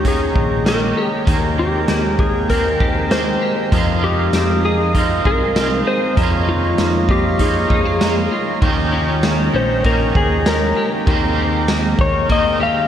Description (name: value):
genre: dream pop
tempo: 98 BPM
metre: 4/4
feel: straight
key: unclear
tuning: A4 = 436 Hz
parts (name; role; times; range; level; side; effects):
- electric slide guitar; melody; 0.0-12.9 s; F4 to F5; -21 LUFS; left 3 dB; digital delay
- electric guitar at the edge of break-up; accompaniment; 0.0-12.9 s; F2 to G4; -24 LUFS; right 4 dB; harmonic tremolo, analog chorus
- pedal harmonium; sustained chords; 0.0-12.9 s; Ab3 to Bb5; -23 LUFS; right 3 dB; none
- clean electric guitar; arpeggios; 0.0-12.9 s; Eb3 to Ab4; -22 LUFS; left 3 dB; ensemble chorus, digital delay
- fat analog bass; bass; 0.0-12.9 s; Bb1 to F2; -22 LUFS; equal; none
- raw garage drum kit; drums; 0.0-12.4 s; hi-hat, kick drum, ride cymbal, snare drum, tambourine; -20 LUFS; equal; gated reverb
- drifting glass-harmonics texture; texture; 1.1-11.7 s; Eb4 to F5; -32 LUFS; right 1 dB; none
room: moderate lush hall reverb, RT60 1.8 s, small room ambience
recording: bright 1980s-style digital production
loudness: -14 LUFS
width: side -9 dB against mid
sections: 0.0-8.6 A section; 8.6-12.9 B section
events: none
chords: 0.0 Eb7; 1.3 Abmaj9/Eb; 3.7 Fm7; 6.2 Db69/F; 8.6 Eb7; 11.1 Abmaj9/Eb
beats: 0.05 0.66 | 1.28 1.89 2.50 3.11 | 3.73 4.34 4.95 5.56 | 6.17 6.79 7.40 8.01 | 8.62 9.23 9.85 10.46 | 11.07 11.68 12.30